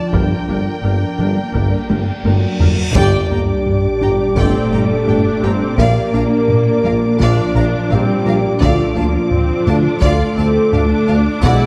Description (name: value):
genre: cinematic, hybrid orchestral and electronic film score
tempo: 85 BPM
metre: 4/4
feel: straight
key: G minor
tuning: A4 = 438 Hz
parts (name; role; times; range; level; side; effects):
- warm symphonic violin section; melody; 0.0-11.7 s; G5 to D6; -33 LUFS; equal; none
- rich chamber violin section; second line; 0.0-11.7 s; Bb4 to Bb5; -27 LUFS; equal; none
- ethereal airy pad; sustained chords; 0.0-11.7 s; Bb2 to D5; -24 LUFS; equal; ensemble chorus, built-in reverb
- rich studio viola section; accompaniment; 0.1-11.7 s; G3 to Bb4; -28 LUFS; equal; none
- tight sequenced synth; arpeggios; 0.1-11.6 s; D3 to Bb4; -30 LUFS; equal; none
- smooth gliding synth bass; riff; 0.1-11.6 s; D2 to Bb3; -22 LUFS; equal; none
- clear tuba; bass; 0.1-11.6 s; G1 to D2; -27 LUFS; equal; none
- dark symphonic cello section; bass; 0.1-11.7 s; G2 to Bb3; -24 LUFS; equal; none
- rich symphonic double bass section; bass; 0.1-11.5 s; G1 to D2; -26 LUFS; equal; none
- taiko ensemble; drums; 0.1-11.7 s; none; -22 LUFS; equal; none
- reverse cymbal and sub drop; sound effects; 2.1-5.8 s; none; -29 LUFS; equal; none
- dark French horn section; sustained chords; 2.3-11.7 s; F4 to Bb4; -22 LUFS; equal; none
room: moderate scoring stage reverb, RT60 2.0 s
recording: dark, warm production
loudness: -15 LUFS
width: mono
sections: 0.0-3.0 A section; 3.0-11.7 A section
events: drum fill 1.9-3.0; reverse cymbal 2.1-3.0; band accent 3.0-3.7; impact 3.0-5.8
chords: 0.1 Gm; 5.8 Bb; 8.6 Dm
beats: | 0.14 0.84 1.55 2.25 | 2.96 3.67 4.37 5.08 | 5.79 6.49 7.20 7.90 | 8.61 9.31 10.02 10.73 | 11.43